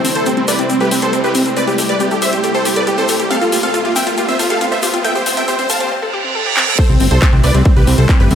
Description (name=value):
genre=uplifting trance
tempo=138 BPM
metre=4/4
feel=straight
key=C major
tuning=A4 = 440 Hz
part: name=wide unison pluck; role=second line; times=0.0-8.3 s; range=C4 to A5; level=-23 LUFS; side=equal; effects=phaser, sidechain pumping, digital delay
part: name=lush unison pad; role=sustained chords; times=0.0-8.3 s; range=C3 to F4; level=-23 LUFS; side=left 1 dB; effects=chorus, sidechain pumping
part: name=wide unison pluck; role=arpeggios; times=0.0-6.7 s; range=C4 to A4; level=-23 LUFS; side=left 3 dB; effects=sidechain pumping, digital delay
part: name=big-room dance drum kit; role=drums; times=0.0-8.3 s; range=crash cymbal, handclaps, hi-hat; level=-21 LUFS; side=left 2 dB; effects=studio ambience
part: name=riser and reverse cymbal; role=sound effects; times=0.0-6.8 s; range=none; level=-22 LUFS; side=right 2 dB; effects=none
part: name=supersaw chords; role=melody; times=0.1-8.3 s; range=C4 to A5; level=-17 LUFS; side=right 1 dB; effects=sidechain pumping, low-pass filter, digital delay
part: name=egg shaker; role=percussion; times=0.1-5.9 s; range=none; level=-27 LUFS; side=left 2 dB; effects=none
part: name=electronic kick drum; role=drums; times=6.8-8.2 s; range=none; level=-11 LUFS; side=equal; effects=studio ambience
part: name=plucky analog bass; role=bass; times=6.9-8.3 s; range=G1 to D2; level=-12 LUFS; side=equal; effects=sidechain pumping
room=moderate lush hall reverb, RT60 2.2 s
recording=high-pass filter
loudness=-12 LUFS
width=side -8 dB against mid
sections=0.0-6.8 A section; 6.8-8.3 B section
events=build-up 0.0-6.8; riser 0.0-5.9; filter sweep on supersaw synth 0.0-6.8; filter sweep on synth arpeggio sound 0.0-6.8; filter sweep 0.0-6.8; reverse cymbal 5.9-6.8; drum fill 6.6; drop 6.8-8.3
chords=0.0 C6; 3.3 Fadd9; 6.8 C6